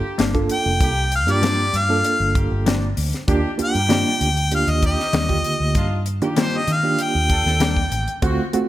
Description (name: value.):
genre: straight-eighth soul blues.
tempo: 97 BPM.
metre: 4/4.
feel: straight.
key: unclear.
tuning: A4 = 440 Hz.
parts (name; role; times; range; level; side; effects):
reed electric piano; accompaniment; 0.0-8.7 s; D3 to A4; -24 LUFS; right 3 dB; fast tremolo.
warm horn section; sustained chords; 0.0-8.5 s; Bb3 to A4; -33 LUFS; left 1 dB; none.
mellow electric guitar; stabs; 0.2-7.8 s; G2 to D4; -26 LUFS; left 5 dB; tremolo.
vintage muted fingered electric bass; bass; 0.2-8.6 s; F1 to Eb3; -22 LUFS; equal; none.
tight funk drum kit; drums; 0.2-8.7 s; hi-hat, kick drum, snare drum; -23 LUFS; equal; none.
bright harmonica; melody; 0.5-8.2 s; C5 to G5; -22 LUFS; left 1 dB; overdrive.
room: light reverb.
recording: none.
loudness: -17 LUFS.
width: side -14 dB against mid.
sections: 0.0-8.7 A section.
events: none.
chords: 0.0 Gm7; 3.3 Ebmaj7.